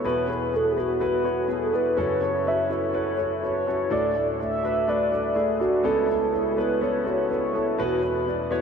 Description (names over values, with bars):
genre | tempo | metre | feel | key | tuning
pop | 124 BPM | 4/4 | straight | unclear | A4 = 440 Hz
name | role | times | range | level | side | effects
mellow horn-like synth lead | melody | 0.0-8.2 s | F#4 to E5 | -24 LUFS | right 2 dB | chorus
warm concert grand piano | accompaniment | 0.0-8.6 s | C#2 to D5 | -26 LUFS | left 2 dB | wide subtle chorus
room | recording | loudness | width
wet huge ambient reverb, RT60 7.8 s | dreamy mix soaked in reverb | -22 LUFS | side -6 dB against mid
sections
0.0-8.6 A section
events
none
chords
0.0 Esus2; 2.0 F#m7; 3.9 D; 5.9 Aadd9/C#; 7.8 Esus2